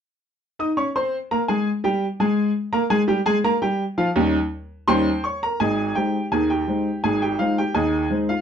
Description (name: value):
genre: ragtime piano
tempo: 84 BPM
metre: 2/4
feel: straight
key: Ab major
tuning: A4 = 440 Hz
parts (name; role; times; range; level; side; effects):
- clear upright piano; solo; 0.6-8.4 s; Ab1 to Eb6; -19 LUFS; equal; none
room: wet small room reverb, RT60 0.5 s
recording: dark, warm production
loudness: -19 LUFS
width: side -8 dB against mid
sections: 0.0-5.6 A section; 5.6-8.4 B section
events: none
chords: 0.0 Ab; 2.7 Eb7; 5.6 Ab